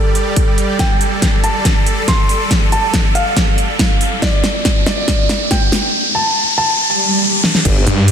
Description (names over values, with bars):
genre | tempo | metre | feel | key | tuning
heavy wobble dubstep | 140 BPM | 4/4 | half-time | unclear | A4 = 441 Hz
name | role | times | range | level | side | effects
felt-muted upright piano | melody | 0.0-7.6 s | A4 to C6 | -20 LUFS | right 1 dB | digital delay
supersaw chords | sustained chords | 0.0-8.1 s | G3 to D5 | -23 LUFS | right 2 dB | sidechain pumping
riser and swell | sound effects | 0.0-7.7 s | none | -18 LUFS | equal | none
big-room dance drum kit | drums | 0.2-8.1 s | crash cymbal, hi-hat, snare drum | -18 LUFS | equal | studio reverb
electronic kick drum | drums | 0.4-7.7 s | none | -16 LUFS | equal | studio reverb
formant-sweep wobble bass | bass | 7.7-7.8 s | G1 | -15 LUFS | equal | chorus, overdrive
snarling distorted saw bass | bass | 7.9-8.1 s | G2 | -10 LUFS | equal | distortion, overdrive
room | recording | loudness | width
moderate lush hall reverb, RT60 1.8 s | dense, heavily limited modern master | -12 LUFS | side -8 dB against mid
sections
0.0-7.7 A section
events
build-up 0.0-7.7; riser 0.0-7.7; drum fill 0.8-5.9, 7.4; swell 6.8-7.7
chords
0.0 G5